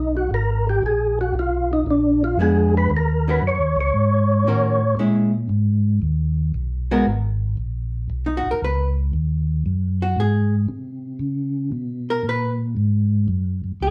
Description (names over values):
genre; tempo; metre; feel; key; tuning
soul jazz organ trio; 116 BPM; 4/4; swing 69% on 8ths; G# minor; A4 = 440 Hz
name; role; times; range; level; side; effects
percussive tonewheel organ; melody; 0.0-5.0 s; D4 to C#5; -23 LUFS; equal; chorus vibrato, fast rotary speaker
mellow tonewheel organ; bass; 0.0-13.9 s; G#1 to C#3; -23 LUFS; equal; chorus vibrato, slow rotary speaker
archtop guitar, miked and amplified; accompaniment; 2.4-13.9 s; D#3 to B4; -24 LUFS; equal; none
room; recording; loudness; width
wet studio reverb, RT60 0.7 s; heard from further back in the room; -21 LUFS; mono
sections
0.0-7.1 A section; 7.1-13.9 A section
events
tonewheel organ solo 0.0-7.1; hollow-body jazz guitar solo 7.1-13.9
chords
0.0 Emaj7 (rootless); 0.8 A#7b9; 2.9 D#m7; 5.0 A#m7b5; 6.0 D#m; 7.1 G#madd9; 9.1 D#m; 10.2 G#; 11.2 C#5; 13.3 F#sus2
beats
0.30 | 0.82 1.34 1.86 2.38 | 2.90 3.42 3.94 4.46 | 4.98 5.50 6.01 6.53 | 7.05 7.57 8.09 8.61 | 9.13 9.65 10.17 10.69 | 11.21 11.73 12.25 12.77 | 13.29 13.80